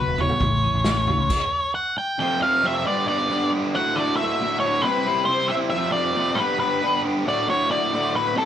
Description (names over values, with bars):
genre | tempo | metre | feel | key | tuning
quiet-loud alternative rock | 136 BPM | 4/4 | straight | unclear | A4 = 440 Hz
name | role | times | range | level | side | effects
octave-fuzz lead guitar | melody | 0.0-8.5 s | A4 to G5 | -22 LUFS | left 1 dB | distortion
clean electric guitar | arpeggios | 0.0-1.3 s | A2 to B4 | -28 LUFS | left 3 dB | none
growling picked electric bass | bass | 0.1-1.3 s | E1 to C#2 | -27 LUFS | equal | overdrive
loose indie drum kit | drums | 0.2-1.4 s | crash cymbal, kick drum, snare drum, toms | -24 LUFS | equal | none
fuzz guitar | riff | 2.2-8.5 s | D2 to C5 | -24 LUFS | right 1 dB | distortion
room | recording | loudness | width
moderate large studio reverb, RT60 0.9 s | band playing live in one room | -19 LUFS | side -10 dB against mid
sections
0.0-2.2 A section; 2.2-8.5 B section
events
stop 1.3-2.2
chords
0.4 A; 2.2 F; 2.9 G; 3.7 D; 4.8 C; 5.7 F; 6.4 G; 7.3 D